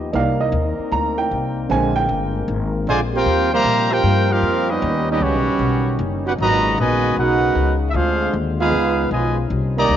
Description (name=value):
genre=jazz, big band swing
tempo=154 BPM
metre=4/4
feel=swing 66% on 8ths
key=Eb major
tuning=A4 = 440 Hz
part: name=warm baby grand piano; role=accompaniment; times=0.0-2.4 s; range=D3 to Bb5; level=-21 LUFS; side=right 4 dB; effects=cassette tape
part: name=warm trombone section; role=sustained chords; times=0.0-10.0 s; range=Bb2 to Bb4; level=-27 LUFS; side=left 2 dB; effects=cassette tape
part: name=upright bass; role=bass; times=0.0-10.0 s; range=F#1 to Bb2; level=-22 LUFS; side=left 2 dB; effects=none
part: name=warm trumpet section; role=melody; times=2.9-10.0 s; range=B3 to Bb5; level=-20 LUFS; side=left 1 dB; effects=cassette tape
part: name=mellow trombone section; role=second line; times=2.9-10.0 s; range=Bb2 to G4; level=-21 LUFS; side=right 6 dB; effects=cassette tape
room=moderate lush hall reverb, RT60 2.5 s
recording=home recording on cassette, nothing above 7.5 kHz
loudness=-16 LUFS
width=side -10 dB against mid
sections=0.0-3.3 A section; 3.3-10.0 B section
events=grand piano solo 0.0-3.3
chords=0.1 Cm9; 1.7 Bb9; 3.3 Eb69; 4.8 Eb7alt; 6.4 Abm11; 7.9 Dm7b5; 8.7 Db9